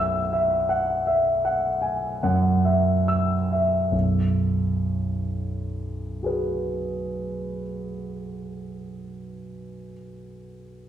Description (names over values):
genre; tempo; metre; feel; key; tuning
classical, impressionist solo piano; 22-29 BPM (dotted quarters); 9/8; rubato; unclear; A4 = 440 Hz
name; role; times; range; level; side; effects
warm concert grand piano; solo; 0.0-10.9 s; B1 to F#6; -23 LUFS; equal; none
room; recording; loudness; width
wet recital hall reverb, RT60 1.5 s; recorded in a church or concert hall; -22 LUFS; side -10 dB against mid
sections
0.0-3.9 A section; 3.9-10.9 B section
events
slowing down 0.0-3.9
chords
0.0 F#9sus4/B; 3.9 B5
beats
1.44 | 3.92 6.23 8.55